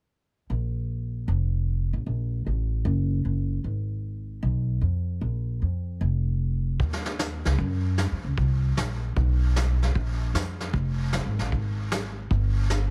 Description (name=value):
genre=jazz piano trio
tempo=152 BPM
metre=4/4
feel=swing 66% on 8ths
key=unclear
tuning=A4 = 440 Hz
part: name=upright bass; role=bass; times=0.5-12.9 s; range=F1 to Gb2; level=-27 LUFS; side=equal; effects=none
part: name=vintage brush drum kit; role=drums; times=6.8-12.9 s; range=brushed snare drum, hi-hat, kick drum, snare drum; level=-33 LUFS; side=equal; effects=none
room=little or no reverb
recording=heavily compressed radio sound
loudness=-27 LUFS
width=mono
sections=0.5-6.8 A section; 6.8-12.9 B section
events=none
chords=none